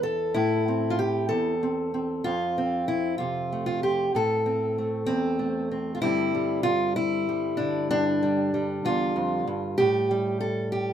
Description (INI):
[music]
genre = folk, solo fingerstyle acoustic guitar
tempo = 64 BPM (dotted quarters)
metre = 6/8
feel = straight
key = unclear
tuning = A4 = 441 Hz
[part]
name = fingerpicked acoustic archtop guitar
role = solo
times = 0.0-10.9 s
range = E2 to A4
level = -23 LUFS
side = equal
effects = none
[sound]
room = light reverb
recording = minimal, uncompressed stereo recording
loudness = -23 LUFS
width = side -9 dB against mid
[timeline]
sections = 0.0-6.0 A section; 6.0-10.9 B section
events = none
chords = 0.0 Am; 2.2 F; 4.1 Am; 6.0 G7sus4; 9.8 A7(no3)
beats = | 0.35 1.29 | 2.24 3.18 | 4.13 5.07 | 6.01 6.96 | 7.90 8.85 | 9.79 10.73